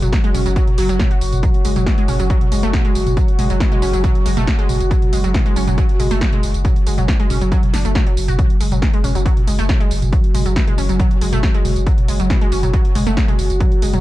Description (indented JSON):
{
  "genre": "driving peak-time techno",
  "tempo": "138 BPM",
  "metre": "4/4",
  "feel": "straight",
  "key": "unclear",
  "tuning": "A4 = 441 Hz",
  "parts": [
    { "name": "wide unison pluck", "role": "riff", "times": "0.0-14.0 s", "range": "E3 to F#4", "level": "-22 LUFS", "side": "equal", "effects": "sidechain pumping, digital delay" },
    { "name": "saturated sub bass", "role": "bass", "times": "0.0-14.0 s", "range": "F#1", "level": "-20 LUFS", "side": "equal", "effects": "overdrive, sidechain pumping, low-pass filter" },
    { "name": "analog drone", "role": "drone", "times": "0.0-14.0 s", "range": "F#3 to F#4", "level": "-25 LUFS", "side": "equal", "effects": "chorus, sidechain pumping" },
    { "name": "techno drum kit", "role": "drums", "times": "0.0-14.0 s", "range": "hi-hat, snare drum, tambourine, toms", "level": "-23 LUFS", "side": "right 1 dB", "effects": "overdrive, sidechain pumping on hats, small room ambience, sidechain pumping on toms, sidechain pumping on perc" },
    { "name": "electronic kick drum", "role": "drums", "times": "0.1-13.7 s", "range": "none", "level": "-16 LUFS", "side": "equal", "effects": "overdrive, small room ambience" }
  ],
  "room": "light reverb",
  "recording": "dark, warm production",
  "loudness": "-14 LUFS",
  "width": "side -16 dB against mid",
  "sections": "0.0-14.0 A section",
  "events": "none",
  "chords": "none"
}